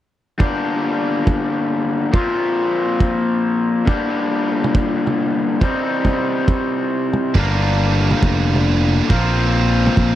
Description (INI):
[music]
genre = indie rock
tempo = 138 BPM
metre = 4/4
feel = straight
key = G minor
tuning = A4 = 440 Hz
[part]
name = raw garage guitar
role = riff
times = 0.4-10.2 s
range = G2 to Bb4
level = -18 LUFS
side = left 2 dB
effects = overdrive
[part]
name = vintage drum kit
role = drums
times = 0.4-10.1 s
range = kick drum, toms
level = -18 LUFS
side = right 1 dB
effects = none
[part]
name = scooped high-gain guitar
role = riff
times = 7.3-10.2 s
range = G2 to D4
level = -23 LUFS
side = right 9 dB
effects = distortion, analog chorus
[part]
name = picked electric bass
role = bass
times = 7.3-10.2 s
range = F1 to Bb1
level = -18 LUFS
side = right 1 dB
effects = none
[sound]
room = small room ambience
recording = dry, close 1970s-style studio recording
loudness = -15 LUFS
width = side -13 dB against mid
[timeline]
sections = 0.4-10.2 A section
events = none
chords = 0.4 Gm; 2.1 Bbsus2; 3.9 Gm; 5.6 Cm; 7.4 Gm; 9.1 Bbsus2